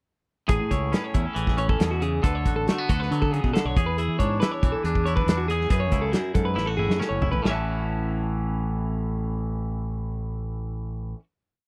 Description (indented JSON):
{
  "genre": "math rock and midwest emo",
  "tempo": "138 BPM",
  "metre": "4/4",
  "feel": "straight",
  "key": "A major",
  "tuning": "A4 = 440 Hz",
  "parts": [
    { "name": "twangy electric guitar", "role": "accompaniment", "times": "0.5-11.2 s", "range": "E2 to A4", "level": "-33 LUFS", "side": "equal", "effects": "none" },
    { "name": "clean electric guitar", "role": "arpeggios", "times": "0.5-11.2 s", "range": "F#4 to A5", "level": "-32 LUFS", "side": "equal", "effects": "none" },
    { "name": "growling fingered electric bass", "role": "bass", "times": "0.5-11.1 s", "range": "F#1 to E3", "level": "-29 LUFS", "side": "equal", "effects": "overdrive" },
    { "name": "loose indie drum kit", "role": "drums", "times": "0.5-7.5 s", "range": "hi-hat, kick drum, snare drum, toms", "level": "-27 LUFS", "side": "equal", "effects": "none" }
  ],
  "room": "little or no reverb",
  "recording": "dry, close 1970s-style studio recording",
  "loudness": "-25 LUFS",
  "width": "mono",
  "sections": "0.5-7.4 A section; 7.4-10.9 final chord",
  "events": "drum fill 6.6-7.4",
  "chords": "0.5 Amaj7; 2.2 D6; 3.8 E7; 5.7 F#m9; 6.6 A6"
}